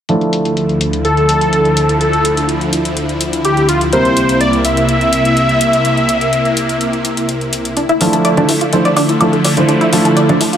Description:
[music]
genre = progressive house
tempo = 125 BPM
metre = 4/4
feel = straight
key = D minor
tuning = A4 = 440 Hz
[part]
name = supersaw pad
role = sustained chords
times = 0.1-10.6 s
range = C2 to E4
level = -15 LUFS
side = equal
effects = phaser
[part]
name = warm baby grand piano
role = stabs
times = 0.1-10.4 s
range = C3 to C5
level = -16 LUFS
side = right 1 dB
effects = low-pass filter, tape echo
[part]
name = electronic hi-hat and woodblock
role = drums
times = 0.1-10.6 s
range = none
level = -20 LUFS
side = left 2 dB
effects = high-pass filter on hats, low-pass filter on hats, high-pass filter on perc, low-pass filter on perc
[part]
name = wide unison lead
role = melody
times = 1.0-7.2 s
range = F4 to E5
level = -14 LUFS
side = equal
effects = tape echo
[part]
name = analog pluck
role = arpeggios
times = 7.8-10.6 s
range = D4 to D5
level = -16 LUFS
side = equal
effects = lush chorus, tape echo
[part]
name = tight sequencer bass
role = bass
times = 8.0-10.6 s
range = D2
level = -26 LUFS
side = equal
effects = none
[sound]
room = moderate recital hall reverb, RT60 1.3 s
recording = none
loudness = -11 LUFS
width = side -9 dB against mid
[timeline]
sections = 0.1-7.8 A section; 7.8-10.6 B section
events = filter sweep on grand piano 0.1-7.8, 7.8-10.6; build-up 7.8-10.6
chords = 0.1 Dmadd9; 3.9 C7; 7.8 Dmadd9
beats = | 0.09 0.57 1.05 1.53 | 2.01 2.49 2.97 3.45 | 3.93 4.41 4.89 5.37 | 5.85 6.33 6.81 7.29 | 7.77 8.25 8.73 9.21 | 9.69 10.17

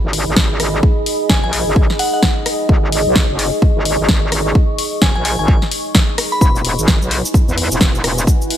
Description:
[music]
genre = bass house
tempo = 129 BPM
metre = 4/4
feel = swing 60% on 16ths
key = G# minor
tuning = A4 = 440 Hz
[part]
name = metallic wobble bass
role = bass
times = 0.0-8.3 s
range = E1 to E2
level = -19 LUFS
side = equal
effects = chorus, tube saturation, sidechain pumping
[part]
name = deep dark ambient pad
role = texture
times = 0.1-8.6 s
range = E4 to C#6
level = -21 LUFS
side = equal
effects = chorus, built-in reverb, sidechain pumping
[part]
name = house drum kit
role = drums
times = 0.1-8.6 s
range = cabasa, hi-hat, rim click, snare drum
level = -18 LUFS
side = left 1 dB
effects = studio reverb
[part]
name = electronic kick drum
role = drums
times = 0.4-8.4 s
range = none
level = -14 LUFS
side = equal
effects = studio reverb
[part]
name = glassy synth bell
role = melody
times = 1.3-2.2, 5.0-6.5 s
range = F#5 to B5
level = -23 LUFS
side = left 1 dB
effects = chorus, ping-pong delay
[sound]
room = digital ambience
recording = none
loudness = -12 LUFS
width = side -11 dB against mid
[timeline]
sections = 0.0-8.6 A section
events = none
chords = 0.0 G#m; 6.4 E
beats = 0.37 | 0.83 1.30 1.76 2.23 | 2.69 3.16 3.62 4.09 | 4.55 5.02 5.48 5.95 | 6.41 6.88 7.34 7.81 | 8.27

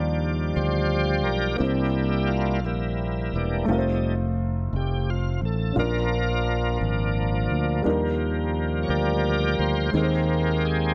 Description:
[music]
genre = slow gospel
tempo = 58 BPM (dotted quarters)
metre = 6/8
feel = straight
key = Eb major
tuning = A4 = 445 Hz
[part]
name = warm upright piano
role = accompaniment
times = 0.0-10.9 s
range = Bb2 to D5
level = -31 LUFS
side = equal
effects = none
[part]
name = bright tonewheel organ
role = sustained chords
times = 0.0-10.9 s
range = E3 to D5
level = -29 LUFS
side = equal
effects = slow rotary speaker, overdrive, chorus vibrato
[part]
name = fingered electric bass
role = bass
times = 0.0-10.9 s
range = E1 to Eb2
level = -28 LUFS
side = equal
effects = none
[sound]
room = light reverb, small room ambience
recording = none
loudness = -24 LUFS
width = mono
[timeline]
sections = 0.0-10.9 A section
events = tonewheel organ solo 0.0-10.9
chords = 0.0 Ebmaj7; 1.6 C7; 3.7 F7; 5.8 Bb; 7.9 Ebmaj7; 9.9 Abmaj7/Eb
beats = 0.56 | 1.60 2.64 | 3.68 4.72 | 5.77 6.81 | 7.85 8.89 | 9.94

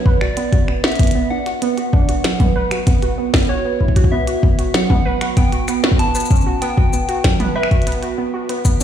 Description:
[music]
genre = IDM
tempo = 96 BPM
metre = 4/4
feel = straight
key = B minor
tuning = A4 = 438 Hz
[part]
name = soft struck synth lead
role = melody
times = 0.0-8.1 s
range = C#5 to A5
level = -25 LUFS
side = left 2 dB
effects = chorus, tremolo, cassette tape, digital delay
[part]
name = warbly dusty pluck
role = arpeggios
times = 0.1-8.8 s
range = F#3 to B4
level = -20 LUFS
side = right 4 dB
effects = lush chorus, digital delay
[part]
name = electronic kick drum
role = drums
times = 0.1-8.8 s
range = none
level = -15 LUFS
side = left 1 dB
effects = none
[part]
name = glitchy drum kit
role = drums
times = 0.2-8.8 s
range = cabasa, finger snaps, hi-hat, snare drum, toms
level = -22 LUFS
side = equal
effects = tape echo
[sound]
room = little or no reverb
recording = played on a big sound system in a bare room, stone room reverb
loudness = -14 LUFS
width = side -10 dB against mid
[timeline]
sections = 0.0-8.8 A section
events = none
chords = 0.0 Bsus2; 4.1 A7sus2 (rootless)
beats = 0.37 0.99 | 1.62 2.24 2.87 3.49 | 4.12 4.74 5.37 5.99 | 6.62 7.24 7.87 8.49

